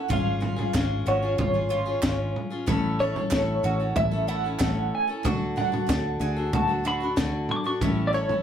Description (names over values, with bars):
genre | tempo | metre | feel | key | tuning
indie folk with a building arrangement | 93 BPM | 4/4 | straight | A major | A4 = 440 Hz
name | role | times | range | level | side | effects
twelve-string electric guitar | melody | 0.0-8.4 s | C#5 to D6 | -28 LUFS | right 1 dB | tremolo
picked acoustic archtop guitar | accompaniment | 0.0-8.4 s | A2 to A4 | -30 LUFS | left 2 dB | none
bowl-back mandolin | arpeggios | 0.1-8.4 s | E4 to G#4 | -35 LUFS | right 6 dB | none
fingered electric bass | bass | 0.1-8.4 s | G#1 to D2 | -29 LUFS | equal | none
compact cocktail drum kit | drums | 0.1-8.4 s | kick drum, snare drum, toms | -28 LUFS | equal | none
group handclap | percussion | 0.7-7.3 s | none | -36 LUFS | right 4 dB | none
room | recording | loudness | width
wet studio ambience, RT60 0.5 s | rough rehearsal-room recording | -23 LUFS | side -9 dB against mid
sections
0.0-8.4 A section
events
none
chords
0.1 C#/G#; 2.7 A; 5.2 D; 7.8 A